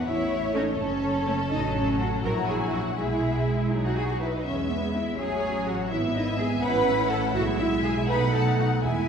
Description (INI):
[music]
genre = quick classical-period movement for string orchestra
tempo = 82 BPM (dotted quarters)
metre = 6/8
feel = straight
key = E major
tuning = A4 = 439 Hz
[part]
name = warm symphonic violin section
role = melody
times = 0.0-9.1 s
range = B4 to B5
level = -34 LUFS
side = left 6 dB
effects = none
[part]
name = rich studio violin section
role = second line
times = 0.0-9.1 s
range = F#4 to G#5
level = -31 LUFS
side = left 3 dB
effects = none
[part]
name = clear symphonic double bass section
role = bass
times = 0.1-9.1 s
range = F#1 to E2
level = -29 LUFS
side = right 2 dB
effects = none
[part]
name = rich symphonic cello section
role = bass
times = 0.1-9.1 s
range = B3 to B4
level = -29 LUFS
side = right 2 dB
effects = none
[part]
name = rich symphonic viola section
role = accompaniment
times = 0.5-9.1 s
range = F#3 to E4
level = -29 LUFS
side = equal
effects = none
[sound]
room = wet concert hall reverb, RT60 1.7 s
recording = heard from further back in the room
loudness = -23 LUFS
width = side -7 dB against mid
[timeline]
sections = 0.0-9.1 A section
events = none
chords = 0.1 A; 0.8 F#m; 1.5 F#m/A; 2.2 F#7/A#; 3.0 E/B; 3.7 B; 4.5 E; 5.2 F#m/A; 5.9 E/G#; 6.6 A; 7.4 E/B; 8.1 B7